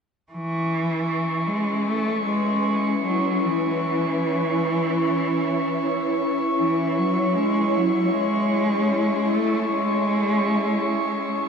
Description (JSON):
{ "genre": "ambient", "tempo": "free time", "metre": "none", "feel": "none", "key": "unclear", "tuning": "A4 = 440 Hz", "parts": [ { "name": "warm cello", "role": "melody", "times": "0.3-11.3 s", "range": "E3 to A3", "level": "-23 LUFS", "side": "equal", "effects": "ping-pong delay" }, { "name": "ethereal airy pad", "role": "sustained chords", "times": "1.5-11.5 s", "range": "C#4 to C#5", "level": "-24 LUFS", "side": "equal", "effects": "ensemble chorus, built-in reverb, phaser" }, { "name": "glass harmonica", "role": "texture", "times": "0.3-11.5 s", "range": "C#6", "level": "-28 LUFS", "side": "right 1 dB", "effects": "none" } ], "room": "wet shimmer reverb, RT60 7.2 s", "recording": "dark, warm production", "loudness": "-20 LUFS", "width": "side -6 dB against mid", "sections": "0.3-11.5 A section", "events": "none", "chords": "0.3 E6" }